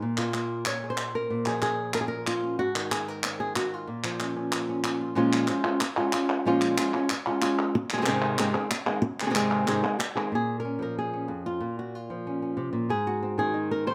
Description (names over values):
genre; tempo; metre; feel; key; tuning
flamenco; 186 BPM; 4/4; straight; Bb minor; A4 = 440 Hz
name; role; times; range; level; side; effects
flamenco guitar; melody; 0.0-13.9 s; F2 to Db5; -29 LUFS; equal; plate reverb
palmas hand claps; percussion; 0.2-10.3 s; none; -33 LUFS; equal; none
room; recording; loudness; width
light reverb; none; -28 LUFS; mono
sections
0.0-5.2 A section; 5.2-10.3 B section; 10.3-13.9 C section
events
none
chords
0.0 Bb7(no3); 2.6 Ab; 3.9 Bbmadd9; 5.2 Bbm7; 7.7 Ab; 10.3 Bbm7; 12.9 Ab